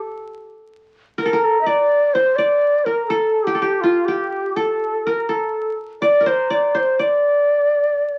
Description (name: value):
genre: arabic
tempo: 124 BPM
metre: 4/4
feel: straight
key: D maqam bayati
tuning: A4 = 438 Hz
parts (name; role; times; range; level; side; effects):
- qanun; second line; 0.0-8.2 s; F4 to D5; -24 LUFS; equal; none
- bright reedy ney; melody; 1.2-8.2 s; F4 to Eb5+49c; -19 LUFS; equal; none
room: moderate studio reverb, RT60 0.5 s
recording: very old 78 rpm record, vinyl crackle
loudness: -18 LUFS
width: mono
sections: 0.0-8.2 A section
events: none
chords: none